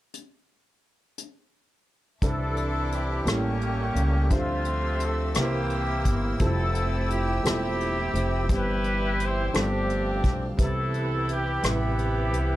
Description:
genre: slow gospel.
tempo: 57 BPM (dotted quarters).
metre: 6/8.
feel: straight.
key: C major.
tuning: A4 = 440 Hz.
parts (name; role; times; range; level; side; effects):
soft brush drum kit; drums; 0.1-12.5 s; hi-hat, kick drum, rim click; -27 LUFS; equal; none.
clear upright piano; accompaniment; 2.2-12.6 s; G2 to E5; -32 LUFS; equal; none.
tonewheel organ; sustained chords; 2.2-12.6 s; C3 to E5; -34 LUFS; right 2 dB; slow rotary speaker, overdrive, chorus vibrato.
warm studio string section; sustained chords; 2.2-12.6 s; F4 to E6; -42 LUFS; equal; none.
upright bass; bass; 2.2-12.6 s; E1 to C#2; -28 LUFS; equal; none.
warm horn section; melody; 2.3-12.6 s; A3 to C5; -29 LUFS; equal; none.
room: light reverb.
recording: none.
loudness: -23 LUFS.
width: side -15 dB against mid.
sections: 0.1-2.2 A section; 2.2-12.6 B section.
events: none.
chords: 0.1 N.C.; 2.2 C69; 3.3 A7b9; 4.3 Dm11; 5.4 C7; 6.4 Fmaj9; 8.5 C/G; 9.5 G9sus4; 10.6 Cmaj7.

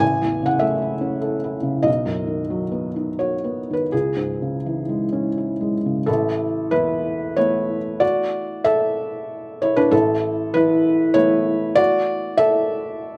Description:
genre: neoclassical minimalist piano.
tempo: 80-100 BPM.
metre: 3/4.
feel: rubato.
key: A major from 6.1 s.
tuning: A4 = 436 Hz.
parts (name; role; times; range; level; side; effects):
felt-muted upright piano; solo; 0.0-13.2 s; A1 to G#5; -21 LUFS; equal; none.
room: little or no reverb.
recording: recorded outdoors, with no room sound.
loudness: -21 LUFS.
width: mono.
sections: 0.0-6.1 A section; 6.1-13.2 B section.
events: none.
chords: 0.0 A; 1.9 B; 3.9 C#m; 6.1 Asus2.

